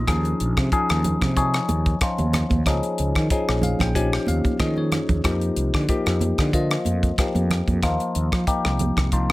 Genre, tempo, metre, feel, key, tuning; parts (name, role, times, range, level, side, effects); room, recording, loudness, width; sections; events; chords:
electric jazz fusion; 93 BPM; 4/4; swing 54% on 16ths; A4 = 444 Hz
bell-like tine electric piano; accompaniment; 0.0-9.3 s; F3 to Ab5; -24 LUFS; left 2 dB; phaser, plate reverb
mellow fretless electric bass; bass; 0.0-9.3 s; Bb1 to F3; -23 LUFS; equal
tight funk drum kit; drums; 0.1-9.3 s; hi-hat, kick drum, rim click; -24 LUFS; equal
congas; percussion; 1.0-9.1 s; -28 LUFS; right 3 dB
light reverb; -19 LUFS; side -18 dB against mid
0.0-9.3 A section
tine electric piano fill 3.3-5.2; drum fill 4.4-5.2
0.1 Eb9sus4; 5.2 F9sus4